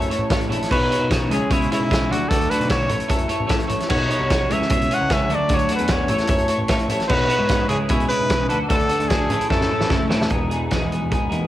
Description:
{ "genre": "indie rock", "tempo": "150 BPM", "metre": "4/4", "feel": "straight", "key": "E major", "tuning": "A4 = 440 Hz", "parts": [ { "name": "twelve-string electric guitar", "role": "riff", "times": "0.0-11.5 s", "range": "E2 to D5", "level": "-23 LUFS", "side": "equal", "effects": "double-tracked left and right, cassette tape" }, { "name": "dark baby grand piano", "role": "bass", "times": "0.0-11.5 s", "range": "E1 to B2", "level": "-26 LUFS", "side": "left 1 dB", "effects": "none" }, { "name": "loose indie drum kit", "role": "drums", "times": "0.0-11.4 s", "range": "crash cymbal, hi-hat, kick drum, snare drum", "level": "-22 LUFS", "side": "equal", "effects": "cassette tape" }, { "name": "bright trumpet", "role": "melody", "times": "0.7-10.1 s", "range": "E4 to F#5", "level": "-23 LUFS", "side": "equal", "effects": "cassette tape, tape echo" } ], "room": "light reverb, small room reverb", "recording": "home recording on cassette", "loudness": "-17 LUFS", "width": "side -14 dB against mid", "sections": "0.0-10.3 A section; 10.3-11.5 B section", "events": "drum fill 9.5-10.3", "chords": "0.0 A; 0.7 Badd9; 1.3 C#m; 2.1 D; 2.9 A; 3.9 Badd9; 4.5 C#m; 5.3 D; 6.1 A; 7.1 Badd9; 7.7 C#m; 8.5 D; 9.3 A; 10.3 Emaj7" }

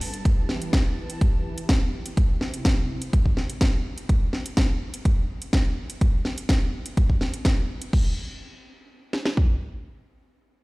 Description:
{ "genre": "progressive house", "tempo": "125 BPM", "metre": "4/4", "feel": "straight", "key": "unclear", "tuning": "A4 = 440 Hz", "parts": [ { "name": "warm analog pad", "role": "sustained chords", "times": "0.0-4.1 s", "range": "C3 to B4", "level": "-36 LUFS", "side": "right 1 dB", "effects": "chorus, sidechain pumping" }, { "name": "house drum kit", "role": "drums", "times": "0.0-8.0 s", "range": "crash cymbal, hi-hat, snare drum", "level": "-29 LUFS", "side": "equal", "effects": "none" }, { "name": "house drum kit", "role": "drums", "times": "0.3-9.5 s", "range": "kick drum, snare drum", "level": "-21 LUFS", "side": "equal", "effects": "none" } ], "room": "little or no reverb", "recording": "played on a big sound system in a bare room, stone room reverb", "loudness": "-21 LUFS", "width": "side -24 dB against mid", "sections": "0.0-7.9 A section; 7.9-10.6 B section", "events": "filter sweep on analog synth pad 0.0-4.1", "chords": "0.3 Em; 2.2 C; 4.1 N.C." }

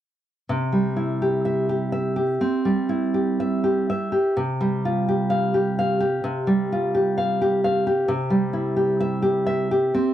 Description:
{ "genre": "romantic piece for solo classical guitar", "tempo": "61-66 BPM", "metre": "4/4", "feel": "rubato", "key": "C major", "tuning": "A4 = 441 Hz", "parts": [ { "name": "nylon-string guitar", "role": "solo", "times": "0.5-10.1 s", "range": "C3 to F5", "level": "-20 LUFS", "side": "equal", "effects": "none" } ], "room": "little or no reverb", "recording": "dry, close 1970s-style studio recording", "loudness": "-20 LUFS", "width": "side -11 dB against mid", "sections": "0.5-10.1 A section", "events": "none", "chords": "0.5 C; 4.4 Csus4; 8.1 C" }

